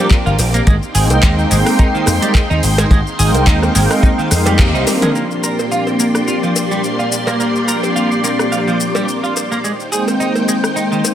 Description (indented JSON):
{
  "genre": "nu-disco, nu disco",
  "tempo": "107 BPM",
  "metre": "4/4",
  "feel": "swing 55% on 16ths",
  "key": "Bb mixolydian",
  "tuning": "A4 = 440 Hz",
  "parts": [
    { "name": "warm analog pad", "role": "accompaniment", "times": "0.0-11.1 s", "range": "F3 to G5", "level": "-18 LUFS", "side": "equal", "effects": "chorus, dub echo" },
    { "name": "string machine, full ensemble", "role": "sustained chords", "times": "0.0-11.1 s", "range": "Bb3 to D6", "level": "-20 LUFS", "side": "equal", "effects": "ensemble chorus, vintage 12-bit sampler grit, sidechain pumping" },
    { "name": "twelve-string electric guitar", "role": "riff", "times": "0.0-11.0 s", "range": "Eb3 to Bb4", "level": "-22 LUFS", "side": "right 3 dB", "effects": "lush chorus, low-pass filter, dub echo" },
    { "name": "house drum kit", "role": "drums", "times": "0.1-11.1 s", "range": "handclaps, hi-hat, rim click, shaker, toms", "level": "-21 LUFS", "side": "left 1 dB", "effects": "none" },
    { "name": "kick drum", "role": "drums", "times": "0.1-4.7 s", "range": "none", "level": "-12 LUFS", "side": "equal", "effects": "none" },
    { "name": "slap bass with an envelope filter", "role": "bass", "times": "0.3-4.8 s", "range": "G1 to F2", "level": "-15 LUFS", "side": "equal", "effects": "tube saturation" },
    { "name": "cowbell", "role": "percussion", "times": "0.4-11.1 s", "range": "none", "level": "-24 LUFS", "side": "right 2 dB", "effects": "none" }
  ],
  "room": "light reverb, small room ambience",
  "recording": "none",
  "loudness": "-12 LUFS",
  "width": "side -11 dB against mid",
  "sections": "0.0-5.2 A section; 5.2-11.1 B section",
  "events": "band accent 4.6; drum fill 4.9",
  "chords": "0.0 Bb69; 0.7 Abmaj7; 5.2 Bb69; 9.6 Abmaj7"
}